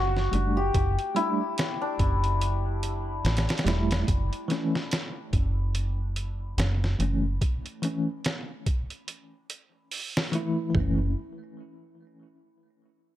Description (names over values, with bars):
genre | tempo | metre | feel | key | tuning
trip hop | 72 BPM | 4/4 | swing 58% on 16ths | F# phrygian | A4 = 440 Hz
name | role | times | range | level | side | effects
santur | melody | 0.0-5.5 s | D4 to G4 | -30 LUFS | left 3 dB | dub echo
deep dub fingered electric bass | bass | 0.0-11.1 s | E1 to A1 | -26 LUFS | equal | tube saturation
trip hop sampler-style drum kit | drums | 0.2-11.0 s | hi-hat, kick drum, snare drum, toms | -29 LUFS | equal | none
bell-like tine electric piano | accompaniment | 0.3-11.1 s | E3 to E4 | -30 LUFS | equal | fast stereo tremolo, tape echo
room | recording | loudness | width
light reverb | none | -25 LUFS | side -13 dB against mid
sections
0.0-4.1 A section; 4.1-10.7 B section; 10.7-13.2 C section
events
none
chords
0.0 Gsus2/F#; 4.1 F#m7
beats
| 0.75 1.58 2.41 3.25 | 4.08 4.91 5.75 6.58 | 7.41 8.25 9.08 9.91 | 10.75